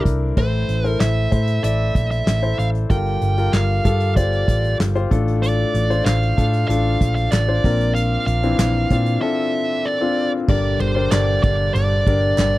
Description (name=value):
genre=piano-driven pop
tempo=95 BPM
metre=4/4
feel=straight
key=unclear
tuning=A4 = 437 Hz
part: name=clear grand piano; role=accompaniment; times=0.0-12.6 s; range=G2 to D5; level=-23 LUFS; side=left 4 dB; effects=none
part: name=hollow-body short-scale picked electric bass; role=bass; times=0.1-12.6 s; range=G1 to Bb2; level=-20 LUFS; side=equal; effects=none
part: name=unplugged drum kit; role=drums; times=0.1-12.5 s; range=crash cymbal, handclaps, hi-hat, kick drum, ride cymbal, snare drum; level=-20 LUFS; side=equal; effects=none
part: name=fuzz lead guitar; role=melody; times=0.4-12.6 s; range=C5 to G5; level=-23 LUFS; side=right 2 dB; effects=distortion
part: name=group handclap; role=percussion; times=6.1-12.5 s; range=none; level=-34 LUFS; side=right 13 dB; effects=none
part: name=percussive tonewheel organ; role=sustained chords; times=10.5-12.6 s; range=Bb2 to G4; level=-29 LUFS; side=right 5 dB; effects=fast rotary speaker
room=light reverb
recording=dry, close 1970s-style studio recording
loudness=-16 LUFS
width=side -17 dB against mid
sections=0.4-10.5 A section; 10.5-12.6 B section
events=none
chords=0.4 Am; 2.9 Gm7; 5.1 Dm/A; 7.6 Bbadd9; 10.5 Gm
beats=| 0.37 1.00 1.64 2.27 | 2.90 3.53 4.16 4.80 | 5.43 6.06 6.69 7.33 | 7.96 8.59 9.22 9.86 | 10.49 11.12 11.75 12.38